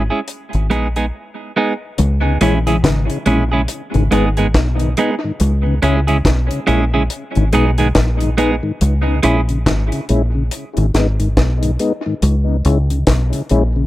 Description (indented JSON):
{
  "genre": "dub reggae",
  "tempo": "70 BPM",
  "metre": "4/4",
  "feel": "swing 60% on 16ths",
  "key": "C# dorian",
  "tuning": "A4 = 441 Hz",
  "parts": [
    { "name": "deep dub fingered electric bass", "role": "bass", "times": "0.0-13.9 s", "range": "G#1 to C#2", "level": "-16 LUFS", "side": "equal", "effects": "none" },
    { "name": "clean electric guitar", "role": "accompaniment", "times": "0.1-9.4 s", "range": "G#3 to G#4", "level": "-19 LUFS", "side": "right 3 dB", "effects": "tape echo" },
    { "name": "deep reggae drum kit", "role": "drums", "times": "0.3-13.7 s", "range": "hi-hat, kick drum, snare drum", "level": "-19 LUFS", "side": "left 1 dB", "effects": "tape echo" },
    { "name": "electric guitar with an envelope filter", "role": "arpeggios", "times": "2.0-4.3 s", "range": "B2 to E3", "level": "-23 LUFS", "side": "left 4 dB", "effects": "lush chorus, tape echo" },
    { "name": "mellow tonewheel organ", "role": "accompaniment", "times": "2.2-13.8 s", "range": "G#2 to E4", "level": "-21 LUFS", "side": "left 3 dB", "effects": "chorus vibrato, slow rotary speaker, tape echo" }
  ],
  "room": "little or no reverb",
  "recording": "none",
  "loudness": "-14 LUFS",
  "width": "side -16 dB against mid",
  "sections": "0.0-2.0 A section; 2.0-13.9 B section",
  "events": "break 1.1-2.0",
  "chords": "0.3 G#m; 2.0 C#m; 3.7 G#m; 5.4 C#m; 7.1 G#m; 8.8 C#m; 10.5 G#m; 12.2 C#m"
}